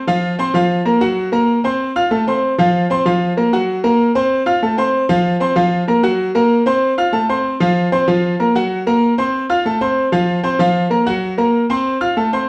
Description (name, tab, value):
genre	latin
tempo	191 BPM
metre	4/4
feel	straight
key	unclear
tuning	A4 = 442 Hz
part	clear concert grand piano	solo	0.1-12.5 s	F3 to F6	-16 LUFS	equal	none
room	wet studio reverb, RT60 0.8 s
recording	heard from further back in the room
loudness	-16 LUFS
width	mono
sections	0.0-3.1 A section; 3.1-12.5 A section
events	none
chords	0.0 Bbsus2; 1.2 Gb; 1.8 F; 2.4 F5; 3.1 Bb5; 3.7 Gb; 4.3 F; 4.9 Bbsus2; 6.2 Gb; 6.8 F; 7.4 Bbsus2; 8.7 Gb; 9.3 F; 10.0 Bbsus2; 11.2 Gb; 11.9 F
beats	0.23 | 0.55 0.86 1.17 1.49 | 1.80 2.11 2.43 2.74 | 3.06 3.37 3.68 4.00 | 4.31 4.62 4.94 5.25 | 5.56 5.88 6.19 6.51 | 6.82 7.13 7.45 7.76 | 8.08 8.39 8.71 9.02 | 9.34 9.65 9.96 10.28 | 10.60 10.91 11.22 11.54 | 11.85 12.17 12.48